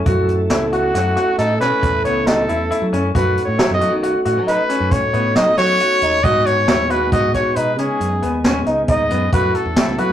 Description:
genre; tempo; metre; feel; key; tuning
progressive instrumental, band music in an uneven meter; 136 BPM; 7/4; straight; F# dorian; A4 = 439 Hz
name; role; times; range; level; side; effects
tonewheel organ; accompaniment; 0.0-10.1 s; G#3 to A4; -25 LUFS; right 1 dB; chorus vibrato, slow rotary speaker
modern bright fingered electric bass; bass; 0.0-10.1 s; C#2 to F#3; -22 LUFS; equal; none
bright concert grand piano; arpeggios; 0.1-10.1 s; B3 to F#4; -20 LUFS; left 1 dB; none
jazz brush drum kit; drums; 0.1-10.1 s; hi-hat, kick drum, snare drum; -21 LUFS; equal; none
warm trumpet; melody; 0.7-10.1 s; F#4 to D#5; -18 LUFS; equal; none
room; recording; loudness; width
wet studio reverb, RT60 0.5 s; rough rehearsal-room recording, tube saturation; -14 LUFS; side -10 dB against mid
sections
0.0-10.1 A section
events
trumpet solo 0.0-10.1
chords
0.0 F#m7; 3.2 B7/F#; 6.2 G#m; 9.3 F#m7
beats
| 0.06 0.50 0.94 1.39 1.83 2.27 2.71 | 3.15 3.59 4.04 4.48 4.92 5.36 5.80 | 6.24 6.68 7.12 7.56 8.01 8.45 8.89 | 9.33 9.77

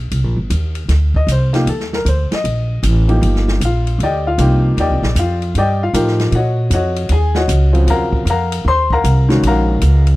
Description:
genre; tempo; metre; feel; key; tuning
modal jazz; 155 BPM; 4/4; swing 66% on 8ths; C dorian; A4 = 440 Hz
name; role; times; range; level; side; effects
upright bass; bass; 0.0-10.2 s; G1 to Bb2; -14 LUFS; equal; none
open jazz drum kit; drums; 0.1-10.1 s; hi-hat, kick drum, ride cymbal, snare drum; -25 LUFS; equal; none
bright upright piano; accompaniment; 1.2-10.1 s; Db3 to C6; -18 LUFS; left 2 dB; none
room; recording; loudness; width
little or no reverb; dry, close 1970s-style studio recording; -13 LUFS; side -18 dB against mid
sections
0.1-10.2 A section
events
none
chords
0.1 Cm9; 6.3 Ebm9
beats
| 0.11 0.50 0.89 1.28 | 1.67 2.05 2.44 2.83 | 3.22 3.61 4.00 4.38 | 4.77 5.16 5.55 5.93 | 6.32 6.71 7.10 7.49 | 7.88 8.26 8.65 9.04 | 9.43 9.82

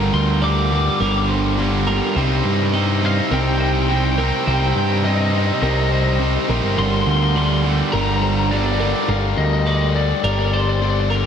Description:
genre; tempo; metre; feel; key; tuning
post-rock; 104 BPM; 4/4; straight; C minor; A4 = 440 Hz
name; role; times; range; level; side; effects
lightly driven lead guitar; melody; 0.0-11.1 s; D5 to D6; -24 LUFS; left 2 dB; slapback echo, analog delay
pedal harmonium; sustained chords; 0.0-9.1 s; Eb4 to Bb5; -32 LUFS; left 2 dB; none
twelve-string electric guitar; arpeggios; 0.0-11.3 s; Bb4 to Eb5; -27 LUFS; right 4 dB; analog delay
distorted electric guitar; riff; 0.0-9.1 s; G2 to C4; -22 LUFS; right 8 dB; overdrive, slapback echo
raw garage guitar; riff; 0.0-11.3 s; G2 to Eb4; -24 LUFS; left 10 dB; overdrive
growling picked electric bass; bass; 0.0-11.2 s; G1 to G2; -20 LUFS; equal; overdrive
room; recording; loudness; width
moderate lush hall reverb, RT60 2.5 s; big arena sound; -16 LUFS; side -8 dB against mid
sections
0.0-11.3 A section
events
none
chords
0.0 Gm7; 2.2 Cm7; 6.8 Gm7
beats
0.42 1.00 1.58 | 2.16 2.73 3.31 3.89 | 4.47 5.04 5.62 6.20 | 6.78 7.35 7.93 8.51 | 9.08 9.66 10.23 10.81

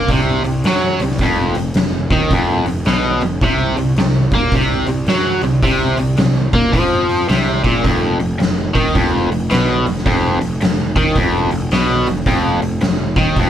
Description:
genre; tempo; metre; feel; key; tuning
blues rock power trio and southern rock; 108 BPM; 4/4; swing 64% on 8ths; unclear; A4 = 441 Hz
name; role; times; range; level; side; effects
overdriven electric guitar; riff; 0.0-13.5 s; F2 to Bb3; -16 LUFS; equal; none
fuzz picked electric bass; bass; 0.0-13.5 s; F1 to Bb2; -21 LUFS; equal; overdrive
oversized low-tuned drum kit; drums; 0.1-13.5 s; hi-hat, kick drum, snare drum; -18 LUFS; equal; none
room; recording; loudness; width
light reverb; band playing live in one room; -13 LUFS; side -10 dB against mid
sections
0.0-13.5 A section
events
none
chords
0.0 N.C.; 1.2 Ebsus2/F; 3.4 Bbsus2; 7.8 Ebsus2/F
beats
0.10 0.65 | 1.21 1.76 2.31 2.87 | 3.42 3.98 4.53 5.08 | 5.63 6.19 6.74 7.29 | 7.85 8.40 8.95 9.50 | 10.06 10.61 11.16 11.72 | 12.27 12.82 13.38

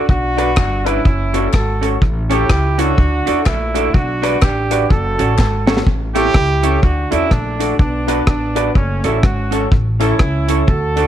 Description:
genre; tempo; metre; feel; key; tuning
ska; 125 BPM; 4/4; swing 60% on 8ths; A mixolydian; A4 = 440 Hz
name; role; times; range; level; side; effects
warm horn section; melody; 0.0-11.1 s; A3 to A4; -20 LUFS; right 2 dB; none
vintage hollow-body jazz guitar; accompaniment; 0.0-11.1 s; C#4 to D5; -22 LUFS; right 12 dB; tape echo
warm upright piano; stabs; 0.0-11.1 s; C#4 to B4; -23 LUFS; left 13 dB; none
upright bass; bass; 0.1-11.1 s; F#1 to E2; -19 LUFS; equal; none
deep reggae drum kit; drums; 0.1-11.1 s; hi-hat, kick drum, rim click, snare drum; -16 LUFS; equal; tape echo
group handclap; percussion; 0.6-5.5 s; none; -31 LUFS; left 14 dB; none
room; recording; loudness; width
small room ambience; 1960s-style stereo with parts hard left and right; -13 LUFS; side -11 dB against mid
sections
0.0-5.9 A section; 5.9-11.1 A section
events
drum fill 5.4-5.9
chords
0.1 Bm; 1.1 F#m; 2.0 A; 3.0 D; 3.9 Bm; 4.9 F#m; 5.9 A; 6.8 D; 7.8 Bm; 8.8 F#m; 9.7 A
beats
| 0.09 0.57 1.05 1.53 | 2.02 2.50 2.98 3.46 | 3.94 4.42 4.91 5.39 | 5.87 6.35 6.83 7.31 | 7.79 8.27 8.76 9.24 | 9.72 10.20 10.68

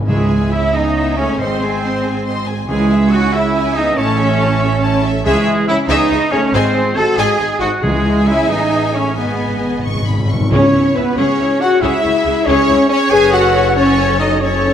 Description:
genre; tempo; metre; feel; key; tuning
cinematic, heroic adventure film score; 92 BPM (dotted quarters); 6/8; straight; C# minor; A4 = 439 Hz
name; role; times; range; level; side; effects
timpani; percussion; 0.0-11.1 s; G#2 to C#3; -21 LUFS; left 1 dB; none
rich symphonic violin section; melody; 0.1-14.7 s; B4 to C#6; -24 LUFS; left 4 dB; none
clear oboe; second line; 0.1-9.8 s; G#4 to A5; -25 LUFS; equal; none
rich symphonic violin section; second line; 0.1-14.7 s; G#4 to G#5; -26 LUFS; left 2 dB; none
warm clarinet; second line; 0.1-14.7 s; E4 to A5; -24 LUFS; left 2 dB; none
rich symphonic viola section; accompaniment; 0.1-14.7 s; C#4 to E5; -24 LUFS; equal; none
warm French horn section; sustained chords; 0.1-14.7 s; E3 to G#4; -19 LUFS; left 4 dB; none
clear trumpet; stabs; 0.1-14.7 s; G#3 to G#5; -23 LUFS; right 2 dB; none
rich symphonic cello section; bass; 0.1-14.7 s; G#3 to A4; -18 LUFS; right 2 dB; none
rich symphonic double bass section; bass; 0.1-14.7 s; F#1 to C#2; -20 LUFS; right 3 dB; none
hollow flute section; second line; 10.5-14.7 s; B4 to G#5; -24 LUFS; left 2 dB; none
room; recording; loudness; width
wet scoring stage reverb, RT60 1.9 s; none; -12 LUFS; side -9 dB against mid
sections
0.1-10.5 A section; 10.5-14.7 B section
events
timpani fill 9.2-10.5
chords
0.1 C#m; 1.4 G#; 2.7 C#m; 4.0 A; 5.3 C#m; 6.5 G#; 7.8 C#m; 9.2 G#m; 10.5 C#m; 13.1 F#m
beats
| 0.09 0.74 | 1.39 2.04 | 2.69 3.33 | 3.98 4.62 | 5.26 5.90 | 6.54 7.19 | 7.84 8.50 | 9.17 9.85 | 10.53 11.18 | 11.83 12.47 | 13.12 13.77 | 14.42

